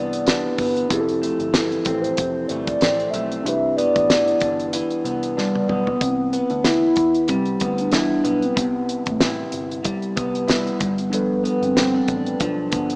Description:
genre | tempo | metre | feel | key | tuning
indie pop, bedroom pop | 94 BPM | 4/4 | swing 55% on 16ths | C major | A4 = 440 Hz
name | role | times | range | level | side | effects
hollow clarinet-like synth lead | melody | 0.0-13.0 s | G3 to E5 | -22 LUFS | equal | lush chorus, slapback echo
electric guitar through a small old amp | accompaniment | 0.0-13.0 s | F2 to E4 | -23 LUFS | equal | wide subtle chorus, warbly pitch drift
mellow tine electric piano | accompaniment | 0.0-6.0, 11.1-13.0 s | F3 to D5 | -25 LUFS | equal | cassette tape
vintage muted picked electric bass | bass | 0.0-13.0 s | F1 to E2 | -34 LUFS | equal | none
damped 70s drum kit | drums | 0.1-13.0 s | hi-hat, kick drum, snare drum, toms | -22 LUFS | equal | none
room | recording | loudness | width
moderate lush hall reverb, RT60 2.1 s | rough home demo mix, small speaker sound | -18 LUFS | side -30 dB against mid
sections
0.0-6.0 A section; 6.0-13.0 B section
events
drum fill 5.4-6.0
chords
0.0 Cmaj9; 0.9 Fmaj7; 3.5 Cmaj9; 10.8 G7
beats
0.26 | 0.90 1.54 2.18 2.82 | 3.46 4.10 4.74 5.38 | 6.02 6.66 7.29 7.93 | 8.57 9.21 9.85 10.49 | 11.13 11.77 12.40

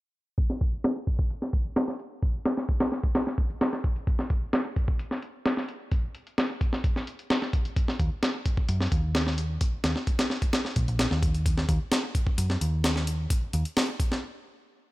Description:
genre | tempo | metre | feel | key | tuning
breakbeat, breaks | 130 BPM | 4/4 | straight | Eb minor | A4 = 441 Hz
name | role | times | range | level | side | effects
breakbeat sampler-style drum kit | drums | 0.4-14.2 s | hi-hat, kick drum, snare drum | -25 LUFS | equal | low-pass filter on hats, studio reverb, low-pass filter on kick, low-pass filter on snare
hollow-body short-scale picked electric bass | bass | 8.0-13.6 s | Bb1 to Gb2 | -26 LUFS | equal | none
room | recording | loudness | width
little or no reverb | none | -25 LUFS | side -19 dB against mid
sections
0.4-14.9 A section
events
filter sweep on drum 0.4-14.9; stop 14.2-14.9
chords
none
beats
| 0.38 0.84 1.30 1.77 | 2.23 2.69 3.15 3.61 | 4.07 4.54 5.00 5.46 | 5.92 6.38 6.84 7.30 | 7.77 8.23 8.69 9.15 | 9.61 10.07 10.54 11.00 | 11.46 11.92 12.38 12.84 | 13.30 13.77

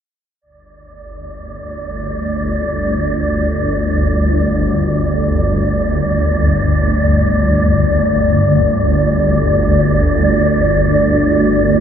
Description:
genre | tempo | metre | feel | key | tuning
dark ambient drone | free time | none | none | unclear | A4 = 440 Hz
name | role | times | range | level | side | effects
swarming drone | drone | 1.3-11.8 s | G1 to D2 | -14 LUFS | equal | built-in reverb, phaser
wind-like tuned noise texture | texture | 1.0-11.8 s | D5 | -18 LUFS | equal | built-in reverb
room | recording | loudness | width
wet huge ambient reverb, RT60 8.7 s | none | -12 LUFS | side -8 dB against mid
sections
0.4-11.8 A section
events
filter sweep on synth drone 0.4-11.8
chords
0.4 G5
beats
free time

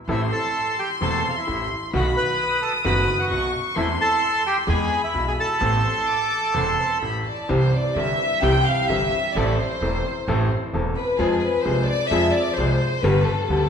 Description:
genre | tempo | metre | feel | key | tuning
tango | 130 BPM | 4/4 | rubato | A minor, C major from 7.5 s | A4 = 440 Hz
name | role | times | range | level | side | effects
bandoneon | melody | 0.1-7.0 s | E4 to B5 | -23 LUFS | right 1 dB | none
warm chamber violin section | second line | 0.1-13.7 s | Ab4 to D#6 | -25 LUFS | left 2 dB | none
bright upright piano | accompaniment | 0.1-13.7 s | E1 to A4 | -24 LUFS | left 1 dB | none
upright bass | bass | 0.1-13.7 s | E1 to F2 | -25 LUFS | right 1 dB | none
room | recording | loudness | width
wet recital hall reverb, RT60 1.8 s | recorded in a church or concert hall | -19 LUFS | side -7 dB against mid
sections
0.0-7.5 A section; 7.5-13.7 B section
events
violin section solo 7.5-13.7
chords
0.1 Am; 1.9 B7; 3.8 Am/E; 4.7 E; 5.6 Amadd9; 7.5 C; 9.4 Am; 11.2 Fm; 13.0 G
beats
| 0.09 0.55 1.02 1.48 | 1.94 2.40 2.86 3.32 | 3.77 4.23 4.68 5.15 | 5.61 6.07 6.54 7.01 | 7.49 7.96 8.42 8.89 | 9.35 9.81 10.28 10.73 | 11.19 11.65 12.11 12.57 | 13.04 13.50

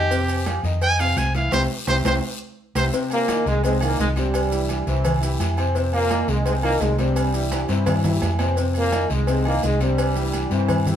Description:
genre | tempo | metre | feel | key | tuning
latin, salsa | 170 BPM | 4/4 | straight | F minor | A4 = 440 Hz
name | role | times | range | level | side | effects
bright trumpet | melody | 0.0-2.8 s | G4 to Ab5 | -23 LUFS | right 2 dB | none
clear upright piano | accompaniment | 0.0-11.0 s | C3 to F5 | -27 LUFS | left 4 dB | none
hollow-body short-scale fingered electric bass | bass | 0.0-11.0 s | C2 to G2 | -23 LUFS | equal | none
congas | percussion | 0.1-11.0 s | none | -29 LUFS | right 1 dB | none
cowbell | percussion | 0.1-10.9 s | none | -32 LUFS | left 4 dB | none
guiro | percussion | 0.1-11.0 s | none | -37 LUFS | left 4 dB | none
maracas | percussion | 0.1-11.0 s | none | -38 LUFS | right 5 dB | none
agogo bells and timbales | percussion | 0.3-10.9 s | none | -30 LUFS | right 3 dB | none
clear trombone section | melody | 3.1-11.0 s | G2 to E4 | -24 LUFS | right 1 dB | none
room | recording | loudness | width
moderate studio reverb, RT60 0.7 s | band playing live in one room | -19 LUFS | side -9 dB against mid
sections
0.0-2.9 A section; 2.9-11.0 B section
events
trumpet solo 0.0-2.9; drum fill 1.5-2.9, 7.5-8.6; band accent 1.5-2.9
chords
0.1 F5; 1.5 C; 2.9 Fm7; 4.3 C; 5.8 Fm7; 7.2 C; 8.6 Fm7; 10.0 C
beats
| 0.11 0.46 0.82 1.17 | 1.52 1.87 2.23 2.58 | 2.93 3.29 3.64 3.99 | 4.34 4.70 5.05 5.40 | 5.75 6.11 6.46 6.81 | 7.16 7.51 7.87 8.22 | 8.57 8.93 9.28 9.63 | 9.98 10.33 10.69

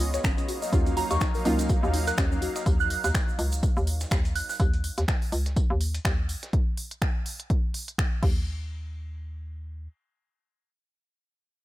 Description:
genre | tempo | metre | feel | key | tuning
deep house | 124 BPM | 4/4 | swing 57% on 16ths | Eb minor | A4 = 440 Hz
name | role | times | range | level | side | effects
warm analog pad | sustained chords | 0.0-4.6 s | Gb3 to F5 | -36 LUFS | equal | chorus, sidechain pumping
soft round pluck | arpeggios | 0.0-2.6 s | Db4 to Eb5 | -33 LUFS | left 3 dB | chorus, sidechain pumping, dub echo
deep mellow chord stab | stabs | 0.0-2.6 s | Gb3 to F4 | -32 LUFS | right 1 dB | chorus, vintage 12-bit sampler grit, sidechain pumping, dub echo
hollow knocking FM bass | bass | 0.0-9.9 s | Ab1 to Eb2 | -28 LUFS | equal | sidechain pumping
deep house drum kit | drums | 0.0-8.3 s | crash cymbal, finger snaps, hi-hat | -34 LUFS | equal | none
dusty soul sampler-style drum kit | drums | 0.0-6.5 s | hi-hat, snare drum, tambourine | -42 LUFS | equal | sidechain pumping on perc, high-pass filter on perc, sidechain pumping on hats, high-pass filter on hats, high-pass filter on snare
egg shaker | percussion | 0.1-4.6 s | none | -41 LUFS | right 4 dB | none
electronic kick drum | drums | 0.2-8.3 s | none | -25 LUFS | equal | none
soft synth bell | melody | 1.0-4.6 s | Bb5 to Gb6 | -31 LUFS | right 4 dB | chorus, phaser, ping-pong delay
room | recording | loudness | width
digital ambience | none | -24 LUFS | side -16 dB against mid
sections
0.0-8.5 A section; 8.5-11.6 B section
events
drop 0.0-8.5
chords
0.5 Ebm9; 8.2 N.C.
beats
0.24 | 0.73 1.21 1.69 2.18 | 2.66 3.15 3.63 4.11 | 4.60 5.08 5.57 6.05 | 6.53 7.02 7.50 7.98 | 8.47 8.95 9.44

